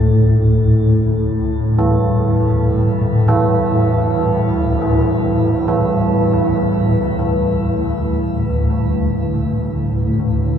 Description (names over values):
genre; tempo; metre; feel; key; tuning
dark ambient drone; free time; none; none; unclear; A4 = 439 Hz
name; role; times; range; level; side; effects
swarming drone; drone; 0.0-10.6 s; D2 to A2; -16 LUFS; left 1 dB; built-in reverb
bronze singing bowl; texture; 0.0-6.4 s; A4; -31 LUFS; equal; shimmer reverb
old church bells; arpeggios; 1.8-10.6 s; E3; -17 LUFS; right 2 dB; ping-pong delay, shimmer reverb
room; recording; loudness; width
wet huge ambient reverb, RT60 7.9 s; none; -14 LUFS; side -8 dB against mid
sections
0.0-6.4 A section; 6.4-10.6 B section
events
filter sweep on synth drone 0.0-6.4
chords
0.0 Dsus2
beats
free time